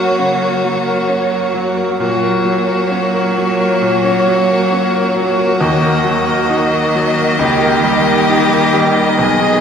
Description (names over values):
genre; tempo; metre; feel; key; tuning
classical, slow romantic movement for piano quintet; 67 BPM; 4/4; rubato; F# major; A4 = 441 Hz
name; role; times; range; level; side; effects
rich violin; melody; 0.0-9.6 s; C#5 to Eb5; -18 LUFS; left 2 dB; none
clear violin; second line; 0.0-9.6 s; F#4 to Ab4; -18 LUFS; left 1 dB; none
warm cello; second line; 0.0-9.6 s; Eb3 to F#3; -21 LUFS; right 2 dB; none
clear baby grand piano; accompaniment; 0.0-9.6 s; Cb2 to A#4; -17 LUFS; equal; none
rich viola; accompaniment; 0.0-9.6 s; A#3 to Cb4; -21 LUFS; right 3 dB; none
room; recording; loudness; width
wet concert hall reverb, RT60 2.3 s; heard from further back in the room; -12 LUFS; side -7 dB against mid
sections
0.0-9.6 A section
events
none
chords
0.0 F#; 2.0 F#/A#; 5.6 Ebm; 7.4 Eb7/Db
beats
0.18 1.09 | 2.00 2.90 3.81 4.72 | 5.61 6.50 7.40 8.30 | 9.20